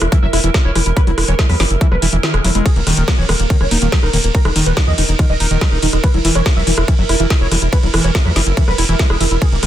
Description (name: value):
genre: psychedelic trance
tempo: 142 BPM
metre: 4/4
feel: straight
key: unclear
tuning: A4 = 440 Hz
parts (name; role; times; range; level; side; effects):
- wide unison lead; melody; 0.0-9.7 s; Bb3 to E5; -22 LUFS; right 1 dB; phaser, sidechain pumping, tape echo
- evolving wavetable pad; sustained chords; 0.0-9.7 s; Bb4; -25 LUFS; right 5 dB; chorus, built-in reverb, sidechain pumping
- round analog bass; bass; 0.0-9.7 s; Eb1 to E2; -16 LUFS; equal; none
- drum and bass drum kit; drums; 0.0-9.7 s; hi-hat, ride cymbal, rim click, snare drum; -19 LUFS; equal; none
- overdriven acid bass; riff; 0.1-9.7 s; D#3 to E4; -22 LUFS; right 1 dB; distortion, auto-pan, sidechain pumping, tape echo
- electronic kick drum; drums; 0.1-9.5 s; none; -14 LUFS; equal; none
room: digital ambience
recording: dense, heavily limited modern master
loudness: -12 LUFS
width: side -12 dB against mid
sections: 0.0-9.7 A section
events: kick drops out 2.2-2.7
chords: 0.0 E(b5, no3); 2.7 Eb5; 6.0 Gb7/Fb